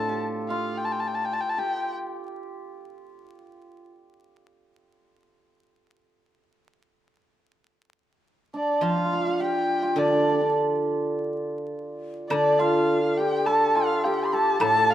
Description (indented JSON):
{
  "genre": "chinese traditional, Chinese chamber ensemble",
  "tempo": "104 BPM",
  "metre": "4/4",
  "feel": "straight",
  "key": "D yu mode",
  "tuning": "A4 = 440 Hz",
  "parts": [
    { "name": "dark erhu", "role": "melody", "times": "0.0-1.9, 8.6-14.9 s", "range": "D5 to C6", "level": "-25 LUFS", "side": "left 2 dB", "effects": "none" },
    { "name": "hammered dulcimer", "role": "second line", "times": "0.0-4.7, 8.5-14.9 s", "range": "C4 to A4", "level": "-27 LUFS", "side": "right 3 dB", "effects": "none" },
    { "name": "guzheng", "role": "accompaniment", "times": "0.0-1.3, 8.8-14.9 s", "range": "A2 to F3", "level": "-28 LUFS", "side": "equal", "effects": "none" },
    { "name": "breathy xiao", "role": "second line", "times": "12.3-14.9 s", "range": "D4 to A4", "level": "-28 LUFS", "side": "left 4 dB", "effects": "none" },
    { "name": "woodblock", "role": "percussion", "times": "12.3-14.7 s", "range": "none", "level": "-30 LUFS", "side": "left 1 dB", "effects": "none" }
  ],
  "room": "wet spring reverb, RT60 1.4 s",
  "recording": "heard from further back in the room, vinyl crackle",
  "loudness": "-22 LUFS",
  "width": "side -12 dB against mid",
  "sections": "0.0-12.3 A section; 12.3-14.9 B section",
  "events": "none",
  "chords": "none"
}